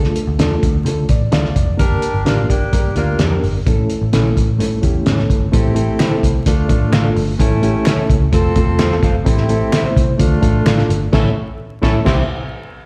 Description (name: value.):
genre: uptempo 1960s-style soul.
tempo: 129 BPM.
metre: 4/4.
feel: straight.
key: unclear.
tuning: A4 = 440 Hz.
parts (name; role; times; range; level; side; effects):
reed electric piano; accompaniment; 0.0-12.2 s; G3 to F5; -23 LUFS; equal; harmonic tremolo.
vintage muted picked electric bass; bass; 0.0-12.2 s; E1 to D3; -20 LUFS; equal; none.
cloth-damped thuddy drum kit; drums; 0.0-12.2 s; crash cymbal, hi-hat, kick drum, snare drum; -19 LUFS; equal; none.
mellow electric guitar; stabs; 0.4-12.2 s; C#4 to F5; -26 LUFS; equal; slapback echo.
clear saxophone section; second line; 1.8-12.2 s; A3 to Bb4; -27 LUFS; equal; none.
finger snaps; percussion; 6.0-10.8 s; none; -34 LUFS; equal; none.
room: light reverb, small room ambience.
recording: live gig heard through the venue's PA, recital hall reverb, vinyl crackle.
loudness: -15 LUFS.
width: mono.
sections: 0.0-5.5 A section; 5.5-12.9 B section.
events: band accent 11.1-12.9.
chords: 0.0 Dm; 1.8 Gm; 3.7 A; 5.5 Am; 6.5 Dm; 7.4 A; 8.3 F; 9.3 Am; 10.2 Dm; 11.1 A; 12.1 C.